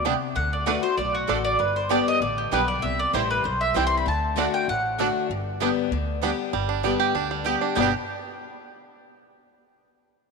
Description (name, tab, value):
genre	bluegrass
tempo	195 BPM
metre	4/4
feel	straight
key	G major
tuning	A4 = 440 Hz
part	mandolin	melody	0.0-5.3, 7.8-7.9 s	F#4 to C6	-25 LUFS	equal	none
part	picked acoustic archtop guitar	accompaniment	0.0-7.9 s	G2 to G4	-28 LUFS	left 13 dB	none
part	mandolin	stabs	0.0-7.9 s	A3 to G5	-31 LUFS	right 11 dB	none
part	upright bass	bass	0.0-7.9 s	G1 to D2	-30 LUFS	equal	none
part	bluegrass banjo	arpeggios	0.1-7.9 s	G3 to G4	-29 LUFS	right 10 dB	none
room	moderate plate reverb, RT60 3.3 s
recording	1960s-style stereo with parts hard left and right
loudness	-21 LUFS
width	side -4 dB against mid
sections	0.0-6.5 A section; 6.5-7.8 B section; 7.8-9.0 C section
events	none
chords	0.4 D; 1.6 G; 2.8 C; 4.1 D; 5.3 G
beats	0.05 | 0.36 0.67 0.98 1.29 | 1.59 1.90 2.21 2.52 | 2.83 3.14 3.45 3.75 | 4.06 4.37 4.68 4.99 | 5.29 5.60 5.91 6.22 | 6.53 6.83 7.14 7.45 | 7.76